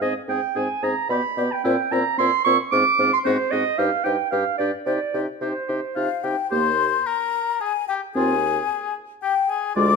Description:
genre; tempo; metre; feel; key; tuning
quick classical-period movement for wind quintet; 111 BPM; 3/4; straight; C minor, Eb major from 6.5 s; A4 = 440 Hz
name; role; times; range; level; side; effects
mellow hollow concert flute; melody; 0.0-10.0 s; B4 to D6; -24 LUFS; left 10 dB; none
clear oboe; second line; 0.0-10.0 s; E4 to D5; -30 LUFS; left 6 dB; none
mellow French horn; accompaniment; 0.0-9.9 s; Ab3 to Eb4; -28 LUFS; left 1 dB; none
warm clarinet; accompaniment; 0.0-9.9 s; F4 to D6; -22 LUFS; right 7 dB; none
mellow bassoon; bass; 0.0-10.0 s; D2 to C3; -27 LUFS; right 2 dB; none
room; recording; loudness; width
moderate large studio reverb, RT60 1.2 s; none; -20 LUFS; side -4 dB against mid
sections
0.0-6.5 A section; 6.5-10.0 B section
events
none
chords
0.0 Ab; 1.1 G/B; 1.6 C7/Bb; 2.7 Fm/Ab; 3.2 Ab7; 3.8 Cm/G (rootless); 4.3 G7(no3); 4.9 Cm; 6.5 Eb; 8.2 Fm7/Eb

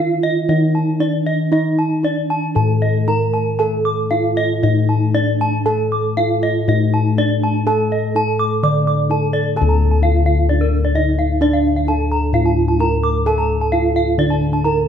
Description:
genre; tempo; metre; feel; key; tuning
Balinese gamelan; 116-130 BPM; 4/4; straight; D pelog; A4 = 441 Hz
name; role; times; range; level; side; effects
gamelan-type bronze metallophone; melody; 0.0-14.9 s; D4 to D5; -21 LUFS; right 4 dB; none
gamelan-type bronze metallophone; arpeggios; 0.0-14.8 s; Bb4-20c to D6; -21 LUFS; equal; none
gamelan-type bossed gongs; bass; 0.0-14.9 s; D2 to A4-30c; -17 LUFS; left 2 dB; none
room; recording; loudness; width
light reverb; close, detailed microphones; -14 LUFS; side -8 dB against mid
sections
0.0-9.6 A section; 9.6-14.9 B section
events
none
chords
none

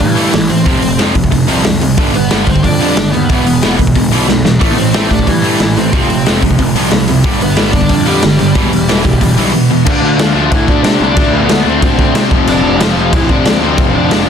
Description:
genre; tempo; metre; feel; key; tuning
punk rock; 183 BPM; 4/4; straight; unclear; A4 = 440 Hz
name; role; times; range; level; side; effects
bluesy overdriven lead guitar; melody; 0.0-14.3 s; E3 to D5; -17 LUFS; equal; distortion
cranked stack guitar; riff; 0.0-9.9 s; E2 to A3; -14 LUFS; right 10 dB; overdrive
overdriven electric guitar; riff; 0.0-14.3 s; E2 to D4; -16 LUFS; left 15 dB; none
fuzz picked electric bass; bass; 0.0-14.3 s; E1 to C3; -17 LUFS; equal; overdrive
raw garage drum kit; drums; 0.0-14.2 s; crash cymbal, hi-hat, kick drum, snare drum; -14 LUFS; equal; none
distorted electric guitar; riff; 4.6-14.3 s; E2 to D4; -19 LUFS; equal; distortion
room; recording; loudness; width
little or no reverb; dense, heavily limited modern master; -9 LUFS; side -7 dB against mid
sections
0.0-9.9 A section; 9.9-14.3 B section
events
drum fill 4.3-4.6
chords
0.0 Am; 0.7 F5; 2.0 G; 3.3 E5; 4.6 Am; 5.9 F5; 7.2 G; 8.6 Em; 9.9 Dm; 12.3 F5

